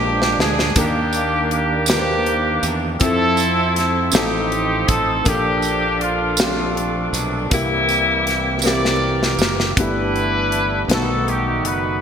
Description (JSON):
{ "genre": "slow gospel", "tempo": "53 BPM (dotted quarters)", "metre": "6/8", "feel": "straight", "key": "unclear", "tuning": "A4 = 440 Hz", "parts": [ { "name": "clear horn section", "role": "melody", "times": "0.0-12.0 s", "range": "G3 to D5", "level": "-19 LUFS", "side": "equal", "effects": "none" }, { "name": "dark upright piano", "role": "accompaniment", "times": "0.0-12.0 s", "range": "G2 to C5", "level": "-24 LUFS", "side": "left 2 dB", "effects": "analog chorus" }, { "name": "bright tonewheel organ", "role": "sustained chords", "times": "0.0-12.0 s", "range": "Eb3 to A4", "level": "-28 LUFS", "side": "right 4 dB", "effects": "slow rotary speaker, chorus vibrato" }, { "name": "modern bright fingered electric bass", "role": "bass", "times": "0.0-12.0 s", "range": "Gb1 to F2", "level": "-25 LUFS", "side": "right 1 dB", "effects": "none" }, { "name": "modern studio drum kit", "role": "drums", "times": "0.2-11.8 s", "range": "hi-hat, kick drum, snare drum", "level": "-21 LUFS", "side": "equal", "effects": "gated reverb" }, { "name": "tambourine", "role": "percussion", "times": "0.8-9.7 s", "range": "none", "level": "-27 LUFS", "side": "right 10 dB", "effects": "none" } ], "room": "moderate lush hall reverb, RT60 2.0 s", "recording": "bright 1980s-style digital production", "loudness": "-16 LUFS", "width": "side -7 dB against mid", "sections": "0.0-9.8 A section; 9.8-12.0 B section", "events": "drum fill 0.0-0.8, 8.6-9.8", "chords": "0.0 Bb7; 0.8 Ebmaj7; 3.0 Fmaj7; 4.1 F7/A; 5.3 Bbmaj7; 7.5 C7; 9.8 G69; 10.9 B7b13" }